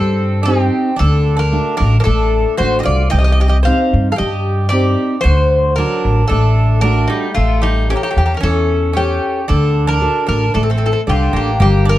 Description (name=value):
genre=greek folk, Greek bouzouki band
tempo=113 BPM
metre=4/4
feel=straight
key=unclear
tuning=A4 = 438 Hz
part: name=Greek bouzouki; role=melody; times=0.0-12.0 s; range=Eb4 to F5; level=-19 LUFS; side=left 2 dB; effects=none
part: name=Greek bouzouki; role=second line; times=0.0-12.0 s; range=G3 to C5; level=-22 LUFS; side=right 4 dB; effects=none
part: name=fingerpicked steel-string acoustic guitar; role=accompaniment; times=0.0-12.0 s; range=C3 to F#5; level=-20 LUFS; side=equal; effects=none
part: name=upright bass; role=bass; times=0.0-12.0 s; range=G1 to G2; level=-14 LUFS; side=equal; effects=none
room=light reverb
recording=dark, warm production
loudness=-12 LUFS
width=side -14 dB against mid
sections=0.0-11.6 A section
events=none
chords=0.0 Cm; 1.0 D; 3.1 Cm; 5.3 D; 7.4 A7; 9.5 D